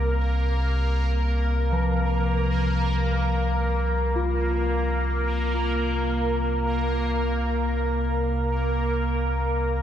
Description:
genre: dark ambient drone.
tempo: free time.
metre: none.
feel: none.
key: unclear.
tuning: A4 = 440 Hz.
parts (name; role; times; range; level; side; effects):
deep rumbling drone; drone; 0.0-9.8 s; C2 to C3; -24 LUFS; equal; built-in reverb, wide subtle chorus.
bubbling stepped-filter texture; texture; 0.0-9.8 s; Bb3 to Bb4; -26 LUFS; right 1 dB; chorus, built-in reverb, shimmer reverb.
gamelan-type bronze metallophone; arpeggios; 1.7-9.7 s; F3 to F4; -32 LUFS; left 4 dB; ping-pong delay.
room: wet cathedral reverb, RT60 6.2 s.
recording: nothing above 10.6 kHz.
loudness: -22 LUFS.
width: side -10 dB against mid.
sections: 0.0-9.8 A section.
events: filter sweep on synth drone 0.0-9.8.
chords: 0.0 Bbsus2/C.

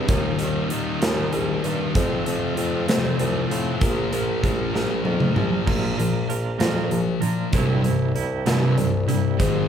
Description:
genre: quiet-loud alternative rock.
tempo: 64 BPM (dotted quarters).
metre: 6/8.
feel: straight.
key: unclear.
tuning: A4 = 435 Hz.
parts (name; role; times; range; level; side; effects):
cranked stack guitar; riff; 0.0-9.7 s; C2 to Bb4; -27 LUFS; right 6 dB; overdrive.
thick fuzz guitar; riff; 0.0-9.7 s; C2 to Bb4; -25 LUFS; left 5 dB; distortion.
mellow bassoon; bass; 0.0-9.7 s; Bb1 to A2; -27 LUFS; equal; none.
big rock drum kit; drums; 0.1-9.5 s; crash cymbal, hi-hat, kick drum, snare drum, toms; -25 LUFS; right 1 dB; none.
twangy electric guitar; arpeggios; 5.7-9.4 s; G2 to Bb4; -31 LUFS; right 7 dB; tremolo.
room: moderate large studio reverb, RT60 1.4 s.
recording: band playing live in one room.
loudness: -20 LUFS.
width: side -8 dB against mid.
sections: 0.0-5.7 A section; 5.7-9.7 B section.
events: drum fill 4.7-5.7.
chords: 0.1 Eb; 2.0 F; 3.8 Bb5; 5.7 Bb; 7.5 C.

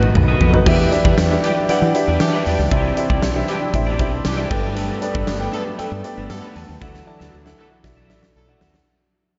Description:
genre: 1980s-style pop.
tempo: 117 BPM.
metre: 4/4.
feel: straight.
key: E minor.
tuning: A4 = 440 Hz.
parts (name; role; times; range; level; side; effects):
warm grand piano; accompaniment; 0.0-8.9 s; G2 to D6; -24 LUFS; equal; none.
chorused pulse-width pad; sustained chords; 0.0-8.8 s; D#3 to G4; -29 LUFS; equal; none.
electric guitar at the edge of break-up; riff; 0.0-8.8 s; D4 to E5; -30 LUFS; equal; analog chorus, tape echo.
woody fretless electric bass; bass; 0.0-8.8 s; G1 to E3; -23 LUFS; equal; none.
huge arena drum kit; drums; 0.0-8.9 s; crash cymbal, hi-hat, kick drum, snare drum, tambourine, toms; -23 LUFS; equal; none.
mellow horn section; stabs; 1.4-8.5 s; D3 to A4; -33 LUFS; equal; none.
room: wet lush hall reverb, RT60 1.9 s, small room ambience.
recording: dreamy mix soaked in reverb, nothing above 7.7 kHz.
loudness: -18 LUFS.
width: mono.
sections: 0.7-8.9 A section.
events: drum fill 0.0-0.7, 6.8-8.9; fade-out 0.7-8.9.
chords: 0.0 B; 0.7 Em7; 2.7 Cadd9; 4.5 Gadd9; 6.8 Dadd9.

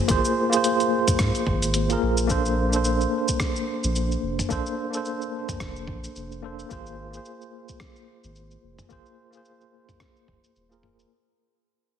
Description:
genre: sunset chillout.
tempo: 109 BPM.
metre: 4/4.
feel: swing 58% on 16ths.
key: unclear.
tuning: A4 = 436 Hz.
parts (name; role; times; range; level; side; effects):
mellow tine electric piano; accompaniment; 0.0-11.1 s; Bb3 to C5; -25 LUFS; right 1 dB; overdrive, medium stereo tremolo, auto-pan, ping-pong delay.
warm sub bass; bass; 0.1-11.0 s; Eb1 to Ab2; -28 LUFS; equal; none.
dusty soul sampler-style drum kit; drums; 0.1-11.1 s; hi-hat, rim click, shaker, toms; -28 LUFS; equal; low-pass filter on perc, studio reverb, low-pass filter on hats, low-pass filter on toms, low-pass filter on snare.
electronic kick drum; drums; 0.1-10.4 s; none; -28 LUFS; equal; overdrive, studio reverb.
room: moderate scoring stage reverb, RT60 1.9 s.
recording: heavily compressed radio sound.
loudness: -22 LUFS.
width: side -8 dB against mid.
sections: 0.0-11.1 A section.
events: fade-out 0.0-11.1.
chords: 0.0 Ab69; 2.3 Bbmaj9; 6.7 Ab69.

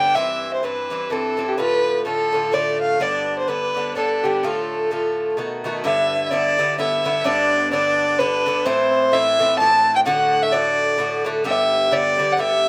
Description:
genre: celtic folk, Celtic waltz.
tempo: 128 BPM.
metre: 3/4.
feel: swing 58% on 8ths.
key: D dorian.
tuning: A4 = 440 Hz.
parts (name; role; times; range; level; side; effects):
dark fiddle; melody; 0.0-12.7 s; G4 to A5; -21 LUFS; equal; none.
Irish bouzouki; accompaniment; 0.0-12.7 s; G2 to G4; -26 LUFS; equal; none.
room: moderate small room reverb, RT60 0.6 s.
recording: none.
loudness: -20 LUFS.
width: mono.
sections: 0.0-5.8 A section; 5.8-12.7 B section.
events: none.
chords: 0.2 C; 1.6 Dm; 3.0 G; 4.4 Dm; 5.4 B7; 5.8 Em7; 7.3 G; 8.7 Am; 10.1 D; 11.5 G.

